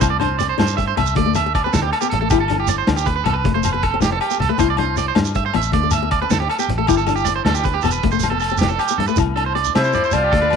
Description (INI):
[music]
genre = highlife guitar band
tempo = 105 BPM (dotted quarters)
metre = 12/8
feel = straight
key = C major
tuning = A4 = 444 Hz
[part]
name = flamenco guitar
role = accompaniment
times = 0.0-10.5 s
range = A3 to E4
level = -24 LUFS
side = left 17 dB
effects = none
[part]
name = electric guitar at the edge of break-up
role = arpeggios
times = 0.0-10.6 s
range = G4 to E5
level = -21 LUFS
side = right 12 dB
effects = tremolo, slapback echo
[part]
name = fingered electric bass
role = bass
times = 0.0-10.6 s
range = E1 to C3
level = -23 LUFS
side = equal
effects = none
[part]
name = vintage drum kit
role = drums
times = 0.0-10.6 s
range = hi-hat, kick drum, snare drum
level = -23 LUFS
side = equal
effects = none
[part]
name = agogo bells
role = percussion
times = 0.0-10.6 s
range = none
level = -26 LUFS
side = left 12 dB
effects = none
[part]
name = congas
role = percussion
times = 0.0-10.6 s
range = none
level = -27 LUFS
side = left 7 dB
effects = none
[part]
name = shekere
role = percussion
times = 0.0-10.2 s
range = none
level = -26 LUFS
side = right 6 dB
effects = none
[part]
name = breathy clarinet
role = melody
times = 9.8-10.6 s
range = C5 to D5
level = -18 LUFS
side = left 1 dB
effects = none
[part]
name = brilliant trumpet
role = second line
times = 9.8-10.6 s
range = E4 to F4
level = -24 LUFS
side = left 13 dB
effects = none
[sound]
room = light reverb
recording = 1960s-style stereo with parts hard left and right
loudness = -16 LUFS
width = side -6 dB against mid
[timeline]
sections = 0.0-9.2 A section; 9.2-10.6 B section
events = none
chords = 0.0 C; 1.2 D5; 2.3 G; 3.4 F; 4.6 C; 6.9 G; 8.0 F; 9.2 C